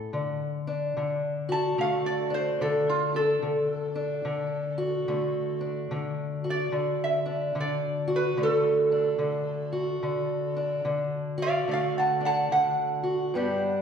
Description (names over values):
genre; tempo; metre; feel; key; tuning
acoustic country blues, solo or duo; 73 BPM; 4/4; swing 63% on 8ths; D major; A4 = 440 Hz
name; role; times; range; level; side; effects
fingerpicked steel-string acoustic guitar; accompaniment; 0.0-13.8 s; G2 to G4; -28 LUFS; left 1 dB; none
metal-body resonator slide guitar; melody; 1.5-13.8 s; F4 to A5; -27 LUFS; right 2 dB; none
room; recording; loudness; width
wet recital hall reverb, RT60 1.6 s; recorded in a church or concert hall; -25 LUFS; side -7 dB against mid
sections
0.1-13.8 A section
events
none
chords
0.1 D